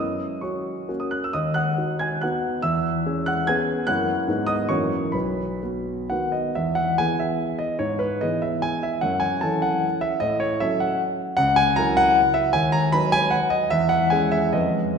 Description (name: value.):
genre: classical, romantic triple-time dance for piano with dotted rhythms.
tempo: 118-168 BPM.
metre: 3/4.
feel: rubato.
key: B major, E major from 6.6 s, B major from 11.4 s.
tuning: A4 = 440 Hz.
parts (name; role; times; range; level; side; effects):
warm concert grand piano; solo; 0.0-15.0 s; B1 to G#6; -20 LUFS; equal; none.
room: wet concert hall reverb, RT60 1.9 s.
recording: recorded in a church or concert hall.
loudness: -20 LUFS.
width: side -6 dB against mid.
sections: 0.0-6.6 A section; 6.6-15.0 B section.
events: none.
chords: 0.0 F#; 1.3 B/D#; 2.6 C#m7/E; 3.9 F#7; 4.3 G#m; 4.7 F#7; 5.1 B; 6.6 E; 7.8 E/G#; 9.0 F#m7; 10.2 F#m/A; 11.4 F#7/C#; 12.5 B/D#; 13.7 C#m/E; 14.6 C#7/E#.